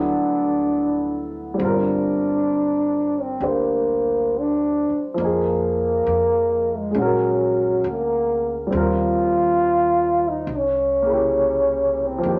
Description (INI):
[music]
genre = jazz ballad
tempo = 68 BPM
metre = 4/4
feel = swing 68% on 8ths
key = unclear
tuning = A4 = 439 Hz
[part]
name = breathy trombone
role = melody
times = 0.0-12.4 s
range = F#3 to F4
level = -22 LUFS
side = equal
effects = none
[part]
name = warm baby grand piano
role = accompaniment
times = 0.0-12.4 s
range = Db3 to C5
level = -27 LUFS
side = equal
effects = none
[part]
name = upright bass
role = bass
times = 0.0-12.4 s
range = G1 to F2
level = -35 LUFS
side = equal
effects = none
[sound]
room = wet studio reverb, RT60 0.8 s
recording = none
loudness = -21 LUFS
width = mono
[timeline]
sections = 0.0-12.4 A section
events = none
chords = 0.0 D; 1.6 Gm7; 5.2 Fm7; 6.9 Bb7alt; 8.7 Ebadd9; 10.5 C7b9